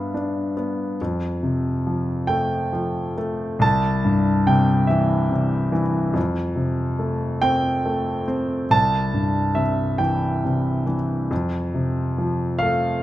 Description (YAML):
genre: classical, lyrical solo piano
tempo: 46 BPM (dotted quarters)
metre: 6/8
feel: rubato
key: unclear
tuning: A4 = 439 Hz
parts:
  - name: clear grand piano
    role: solo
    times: 0.0-13.0 s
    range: C2 to A5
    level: -19 LUFS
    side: equal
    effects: none
room: moderate recital hall reverb, RT60 1.5 s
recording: none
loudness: -19 LUFS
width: side -14 dB against mid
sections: 1.0-13.0 A section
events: none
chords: 0.0 G7; 1.0 F; 3.6 C6; 6.2 F; 8.7 C6; 11.3 F